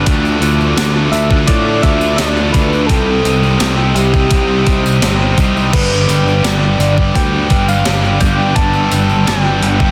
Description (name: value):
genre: rock, shoegaze and dream pop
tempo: 85 BPM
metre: 4/4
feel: straight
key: G mixolydian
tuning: A4 = 440 Hz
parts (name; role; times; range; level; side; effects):
- glass harmonica; sustained chords; 0.0-9.9 s; F4 to E6; -27 LUFS; equal; none
- biting overdriven guitar; riff; 0.0-9.9 s; G2 to A4; -22 LUFS; equal; reverse reverb
- distorted electric guitar; riff; 0.0-9.9 s; G2 to D4; -23 LUFS; equal; overdrive
- thick fuzz guitar; riff; 0.0-9.9 s; G2 to D4; -22 LUFS; equal; none
- picked electric bass; bass; 0.0-9.9 s; G1 to A2; -18 LUFS; equal; none
- gated 80s digital drum machine; drums; 0.1-9.9 s; crash cymbal, hi-hat, kick drum, snare drum; -18 LUFS; equal; gated reverb, gated reverb snare, overdrive
- tambourine; percussion; 0.1-9.4 s; none; -33 LUFS; equal; none
- soft struck synth lead; melody; 1.1-9.9 s; G4 to A5; -22 LUFS; equal; chorus, tape echo
room: little or no reverb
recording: dense, heavily limited modern master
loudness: -13 LUFS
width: mono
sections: 0.0-9.9 A section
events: none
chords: 0.1 Dmadd9; 2.9 Cm; 5.7 G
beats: | 0.07 0.78 1.48 2.19 | 2.90 3.61 4.31 5.02 | 5.73 6.44 7.14 7.85 | 8.56 9.27